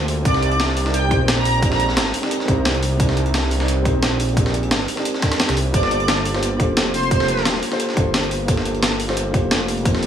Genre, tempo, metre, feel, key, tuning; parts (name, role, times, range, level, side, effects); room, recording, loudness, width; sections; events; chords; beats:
liquid drum and bass; 175 BPM; 4/4; straight; A4 = 445 Hz
felt-muted upright piano; accompaniment; 0.0-10.1 s; Bb3 to D5; -24 LUFS; equal; digital delay
dark detuned saw bass; bass; 0.0-10.1 s; D1 to D2; -22 LUFS; equal
breakbeat sampler-style drum kit; drums; 0.0-10.1 s; hi-hat, snare drum; -26 LUFS; right 1 dB; high-pass filter on hats, high-pass filter on snare, high-pass filter on room
breakbeat sampler-style drum kit; drums; 0.1-10.1 s; hi-hat, snare drum; -23 LUFS; equal; overdrive
airy dreamy lead; melody; 0.3-1.9, 5.7-7.5 s; C5 to Bb5; -24 LUFS; right 1 dB; chorus, digital delay
electronic kick drum; drums; 0.3-9.9 s; -19 LUFS; equal; overdrive
light reverb; studio reverb; -16 LUFS; side -9 dB against mid
0.0-10.1 A section
0.3 Cm9; 5.7 Gm11
| 0.25 0.60 0.94 1.28 | 1.63 1.97 2.31 2.65 | 3.00 3.34 3.68 4.03 | 4.37 4.71 5.05 5.40 | 5.74 6.08 6.43 6.77 | 7.11 7.45 7.80 8.14 | 8.48 8.83 9.17 9.51 | 9.85